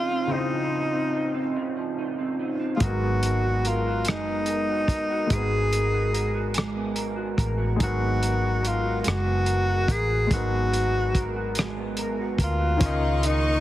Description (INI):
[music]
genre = slow six-eight R&B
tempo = 48 BPM (dotted quarters)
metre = 6/8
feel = straight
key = unclear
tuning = A4 = 440 Hz
[part]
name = mellow tenor saxophone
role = melody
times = 0.0-13.6 s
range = Eb4 to Ab4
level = -27 LUFS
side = equal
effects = none
[part]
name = electric guitar through a small old amp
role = second line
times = 0.0-13.6 s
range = Db3 to Bb4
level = -30 LUFS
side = right 2 dB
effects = analog chorus
[part]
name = clear grand piano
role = accompaniment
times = 0.0-13.6 s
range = Db3 to Eb5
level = -33 LUFS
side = left 4 dB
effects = none
[part]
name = vintage muted fingered electric bass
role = bass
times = 2.8-13.6 s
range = Gb1 to D2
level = -26 LUFS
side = equal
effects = none
[part]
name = warm soul drum kit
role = drums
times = 2.8-13.4 s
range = hi-hat, kick drum, rim click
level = -26 LUFS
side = equal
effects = none
[part]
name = rich studio string section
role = sustained chords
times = 12.8-13.6 s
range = Bb4 to Db6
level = -33 LUFS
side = left 2 dB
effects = none
[part]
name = mellow horn section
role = stabs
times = 12.8-13.6 s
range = Eb3 to Eb4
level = -31 LUFS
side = left 6 dB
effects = tape echo
[sound]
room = light reverb, small room ambience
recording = heavily compressed radio sound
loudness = -22 LUFS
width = side -14 dB against mid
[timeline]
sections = 0.0-12.8 A section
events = none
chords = 0.0 Dbmaj9; 2.8 Abm9; 12.8 Db69